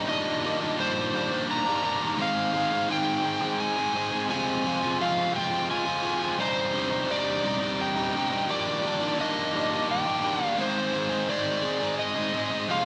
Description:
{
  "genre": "rock",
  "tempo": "86 BPM",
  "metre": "3/4",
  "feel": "straight",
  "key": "unclear",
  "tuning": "A4 = 441 Hz",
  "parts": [
    { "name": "overdriven slide guitar", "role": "melody", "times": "0.0-12.8 s", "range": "C5 to Bb5", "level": "-30 LUFS", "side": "equal", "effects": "slapback echo" },
    { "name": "biting overdriven guitar", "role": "riff", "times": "0.0-12.8 s", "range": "C2 to Ab4", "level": "-29 LUFS", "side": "equal", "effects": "slapback echo" }
  ],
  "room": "wet lush hall reverb, RT60 2.8 s",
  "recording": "big arena sound",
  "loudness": "-27 LUFS",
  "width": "mono",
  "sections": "0.0-12.8 A section",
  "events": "none",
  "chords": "0.1 Ebmaj7; 2.2 Ab; 4.3 Fm; 6.4 Cm; 8.5 Ebmaj7; 10.6 Ab",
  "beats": "| 0.09 0.79 1.49 | 2.19 2.89 3.59 | 4.29 4.99 5.69 | 6.39 7.09 7.79 | 8.49 9.19 9.89 | 10.59 11.29 11.99 | 12.69"
}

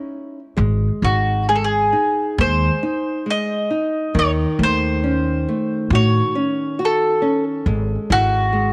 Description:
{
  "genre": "fado-style ballad",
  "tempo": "68 BPM",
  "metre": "4/4",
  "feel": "rubato",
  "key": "unclear",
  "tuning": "A4 = 442 Hz",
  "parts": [
    { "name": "mandolin", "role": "melody", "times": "0.0-8.7 s", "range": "F#4 to D#5", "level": "-22 LUFS", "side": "equal", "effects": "none" },
    { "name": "nylon-string guitar", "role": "accompaniment", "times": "0.0-8.7 s", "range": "D#3 to F#4", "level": "-25 LUFS", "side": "equal", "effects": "none" },
    { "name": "upright bass", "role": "bass", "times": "0.6-8.7 s", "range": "G#1 to A2", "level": "-22 LUFS", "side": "equal", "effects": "none" }
  ],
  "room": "light reverb, small room ambience",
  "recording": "none",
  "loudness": "-19 LUFS",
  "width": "mono",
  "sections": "0.6-8.7 A section",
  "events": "none",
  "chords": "0.0 C#madd9; 0.6 G#; 4.2 D#m7b5; 7.7 Eadd9/G#",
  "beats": "| 0.58 1.48 2.38 3.27 | 4.15 5.03 5.91 6.79 | 7.66 8.53"
}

